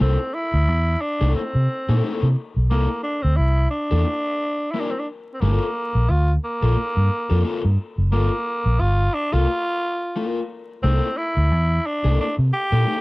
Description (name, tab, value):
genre	funk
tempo	89 BPM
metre	4/4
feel	swing 56% on 16ths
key	unclear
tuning	A4 = 441 Hz
part	breathy tenor saxophone	melody	0.0-13.0 s	Bb3 to G4	-24 LUFS	equal	none
part	raw garage guitar	accompaniment	0.0-13.0 s	Bb3 to Bb4	-28 LUFS	left 4 dB	overdrive, spring reverb
part	vintage muted fingered electric bass	bass	0.0-12.8 s	F#1 to C3	-18 LUFS	equal	none
room	little or no reverb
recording	dry, close 1970s-style studio recording, vinyl crackle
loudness	-19 LUFS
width	side -22 dB against mid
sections	0.0-13.0 A section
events	none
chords	0.0 C13; 5.4 Gm9; 10.8 C13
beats	| 0.01 0.68 1.36 2.03 | 2.71 3.39 4.06 4.74 | 5.42 6.09 6.77 7.45 | 8.13 8.80 9.48 10.16 | 10.84 11.52 12.19 12.87